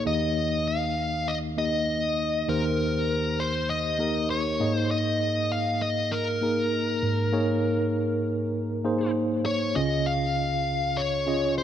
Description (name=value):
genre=pop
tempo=99 BPM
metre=4/4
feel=swing 55% on 16ths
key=unclear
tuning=A4 = 440 Hz
part: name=dark smooth lead guitar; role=melody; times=0.0-11.6 s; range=Bb4 to F5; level=-27 LUFS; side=left 2 dB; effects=overdrive, tape echo
part: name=mellow tine electric piano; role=accompaniment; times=0.0-11.6 s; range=Db2 to Eb5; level=-26 LUFS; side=right 1 dB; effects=fast stereo tremolo
room=moderate lush hall reverb, RT60 2.4 s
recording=none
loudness=-24 LUFS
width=side -10 dB against mid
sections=0.1-9.8 A section; 9.8-11.6 B section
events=none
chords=0.1 Eb; 2.5 Cm7/Eb; 4.6 Absus2; 9.8 Dbadd9